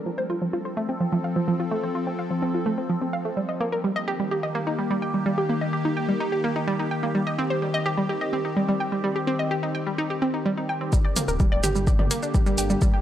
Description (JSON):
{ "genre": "melodic techno", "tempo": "127 BPM", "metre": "4/4", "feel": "straight", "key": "G minor", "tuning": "A4 = 440 Hz", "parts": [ { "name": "evolving wavetable pad", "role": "sustained chords", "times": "0.0-13.0 s", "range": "D3 to A4", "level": "-28 LUFS", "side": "equal", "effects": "phaser, built-in reverb, sidechain pumping" }, { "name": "analog pluck", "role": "arpeggios", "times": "0.1-13.0 s", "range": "F3 to G5", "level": "-25 LUFS", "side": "right 1 dB", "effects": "chorus, sidechain pumping, analog delay" }, { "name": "swelling detuned saw bass", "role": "bass", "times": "10.9-12.9 s", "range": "D1 to G1", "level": "-29 LUFS", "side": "equal", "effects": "sidechain pumping" }, { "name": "deep house drum kit", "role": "drums", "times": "10.9-12.9 s", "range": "hi-hat, shaker, toms", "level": "-28 LUFS", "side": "equal", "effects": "none" }, { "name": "electronic kick drum", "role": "drums", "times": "10.9-12.9 s", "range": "none", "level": "-21 LUFS", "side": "equal", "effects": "none" } ], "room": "moderate digital room reverb, RT60 1.3 s, digital ambience", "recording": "dry, gritty hardware recording", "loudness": "-22 LUFS", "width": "side -11 dB against mid", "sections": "0.0-10.9 A section; 10.9-13.0 B section", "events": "filter sweep on synth arpeggio sound 0.0-10.9; build-up 10.9-13.0", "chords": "0.0 F; 3.4 Eb; 7.1 Cm; 10.9 Gm" }